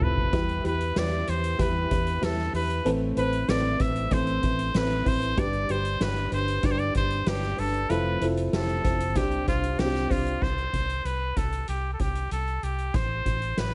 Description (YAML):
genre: piano-driven pop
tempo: 95 BPM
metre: 4/4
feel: straight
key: unclear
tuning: A4 = 440 Hz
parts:
  - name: clear trumpet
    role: melody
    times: 0.0-13.7 s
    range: F4 to E5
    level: -32 LUFS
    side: equal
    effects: none
  - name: dark upright piano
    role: accompaniment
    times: 0.0-10.4 s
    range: G2 to C5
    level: -33 LUFS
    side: equal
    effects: none
  - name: fingerpicked steel-string acoustic guitar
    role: riff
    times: 0.0-10.4 s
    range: A2 to C5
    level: -36 LUFS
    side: equal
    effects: none
  - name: vintage muted fingered electric bass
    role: bass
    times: 0.0-13.7 s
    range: F1 to E2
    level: -32 LUFS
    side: equal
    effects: none
  - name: soft-mallet drum kit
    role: drums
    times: 0.0-13.7 s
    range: crash cymbal, hi-hat, kick drum, snare drum, toms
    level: -32 LUFS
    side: equal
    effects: none
room: studio reverb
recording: nothing above 10.6 kHz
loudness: -26 LUFS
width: mono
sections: 0.0-10.4 A section; 10.4-13.7 B section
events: drum fill 0.0-0.3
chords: 0.3 Em; 2.9 Amadd9; 5.4 G; 7.9 Fmaj7; 9.2 Csus2; 10.4 Am7/C; 12.9 Am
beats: | 0.33 0.96 1.59 2.22 | 2.85 3.48 4.11 4.74 | 5.37 6.00 6.63 7.26 | 7.89 8.53 9.16 9.79 | 10.42 11.05 11.68 12.31 | 12.94 13.57